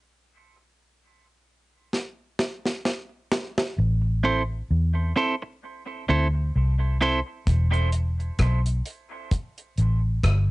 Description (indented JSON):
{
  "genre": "dub reggae",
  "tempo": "65 BPM",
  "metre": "4/4",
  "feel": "swing 57% on 16ths",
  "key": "unclear",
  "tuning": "A4 = 440 Hz",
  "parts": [
    { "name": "deep reggae drum kit", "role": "drums", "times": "1.9-10.5 s", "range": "hi-hat, kick drum, rim click, snare drum", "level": "-25 LUFS", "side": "equal", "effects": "cassette tape" },
    { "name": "vintage muted fingered electric bass", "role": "bass", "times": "3.8-10.5 s", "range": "E1 to E2", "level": "-21 LUFS", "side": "equal", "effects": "none" },
    { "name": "clean electric guitar", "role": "accompaniment", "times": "4.2-7.2 s", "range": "C4 to C5", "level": "-26 LUFS", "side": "right 3 dB", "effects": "high-pass filter, cassette tape, dub echo" }
  ],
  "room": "little or no reverb",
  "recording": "home recording on cassette, nothing above 10.7 kHz, faint mains hum",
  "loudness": "-22 LUFS",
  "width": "side -21 dB against mid",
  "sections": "0.0-3.8 A section; 3.8-10.5 B section",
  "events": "break 0.0-3.8; drum fill 1.9-3.8; part muted 3.8-7.5",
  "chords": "0.1 N.C.; 3.8 Am; 7.5 Em"
}